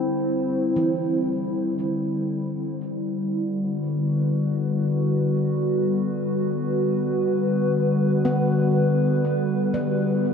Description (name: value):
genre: ambient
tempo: free time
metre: none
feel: none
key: unclear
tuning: A4 = 441 Hz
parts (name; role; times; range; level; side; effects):
- warbly tape-like pad; sustained chords; 0.0-10.3 s; D3 to C5; -21 LUFS; left 1 dB; chorus, built-in reverb
- handpan; arpeggios; 0.0-10.3 s; E3 to B3; -31 LUFS; right 1 dB; tape echo
room: wet huge ambient reverb, RT60 7.2 s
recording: none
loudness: -21 LUFS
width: side -6 dB against mid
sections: 0.0-10.3 A section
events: filter sweep on ambient pad 0.0-10.3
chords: 0.0 Cadd9; 3.1 Gmaj7